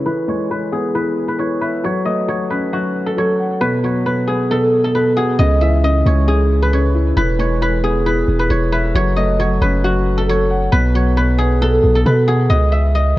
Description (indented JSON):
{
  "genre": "hip hop",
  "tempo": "135 BPM",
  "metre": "4/4",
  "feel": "half-time",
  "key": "C# minor",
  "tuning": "A4 = 442 Hz",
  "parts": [
    { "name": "guzheng", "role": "melody", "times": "0.0-13.2 s", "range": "F#4 to E5", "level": "-18 LUFS", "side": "equal", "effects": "low-pass filter, tape echo" },
    { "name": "dark grand piano", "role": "accompaniment", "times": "0.0-12.5 s", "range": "B2 to F#5", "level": "-19 LUFS", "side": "left 1 dB", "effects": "low-pass filter" },
    { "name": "long sustained 808-style bass", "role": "bass", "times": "5.4-13.1 s", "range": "E1 to B2", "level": "-16 LUFS", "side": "equal", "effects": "none" }
  ],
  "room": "light reverb, small room ambience",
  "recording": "worn, warbling old tape, cassette tape, warbly pitch drift",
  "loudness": "-14 LUFS",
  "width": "side -16 dB against mid",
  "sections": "0.0-5.4 A section; 5.4-13.2 B section",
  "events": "filter sweep 0.0-5.4",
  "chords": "0.1 E; 1.8 F#m; 3.6 B5; 5.4 C#m; 7.2 E; 8.9 F#m; 10.7 B5; 12.5 C#m9"
}